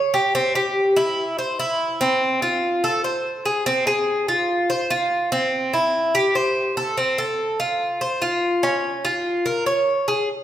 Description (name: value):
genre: latin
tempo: 145 BPM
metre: 4/4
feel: straight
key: unclear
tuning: A4 = 440 Hz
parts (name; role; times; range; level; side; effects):
- Cuban tres; solo; 0.0-10.3 s; C4 to Db5; -19 LUFS; equal; none
room: wet recital hall reverb, RT60 1.7 s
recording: recorded in a church or concert hall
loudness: -19 LUFS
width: side -11 dB against mid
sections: 0.0-10.3 A section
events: none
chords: none